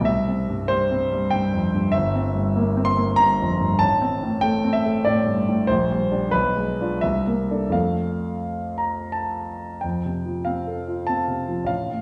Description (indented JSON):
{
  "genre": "classical, romantic character piece for solo piano",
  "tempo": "82-99 BPM",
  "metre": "3/4",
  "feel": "rubato",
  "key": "F major",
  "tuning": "A4 = 440 Hz",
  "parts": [
    { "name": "warm grand piano", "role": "solo", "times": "0.0-12.0 s", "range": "G1 to C6", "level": "-22 LUFS", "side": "equal", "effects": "none" }
  ],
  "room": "wet recital hall reverb, RT60 1.4 s",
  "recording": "recorded in a church or concert hall, nothing above 10.9 kHz",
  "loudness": "-22 LUFS",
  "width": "mono",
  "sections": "0.0-9.8 A section; 9.8-12.0 B section",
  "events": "none",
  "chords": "0.1 C; 1.9 C7/G; 3.8 Amadd11; 5.7 Gm/Bb; 6.3 Bdim7; 7.0 C13; 7.7 F"
}